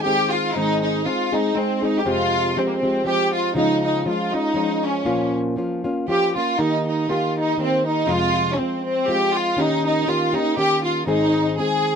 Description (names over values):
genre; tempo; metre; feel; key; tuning
mexican folk, mariachi; 120 BPM; 3/4; swing 53% on 8ths; Ab major; A4 = 442 Hz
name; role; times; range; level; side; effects
clear studio violin section; melody; 0.0-12.0 s; Bb3 to Ab4; -20 LUFS; right 1 dB; none
nylon-string guitar; accompaniment; 0.0-12.0 s; F2 to Ab4; -22 LUFS; left 1 dB; none
room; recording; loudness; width
light reverb; dry, close 1970s-style studio recording; -18 LUFS; side -7 dB against mid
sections
0.6-12.0 A section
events
none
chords
0.0 Ab; 2.1 Fmadd9; 3.6 Db; 5.1 Bbm; 6.6 Eb; 8.1 Fm; 9.6 Eb7; 11.1 Ab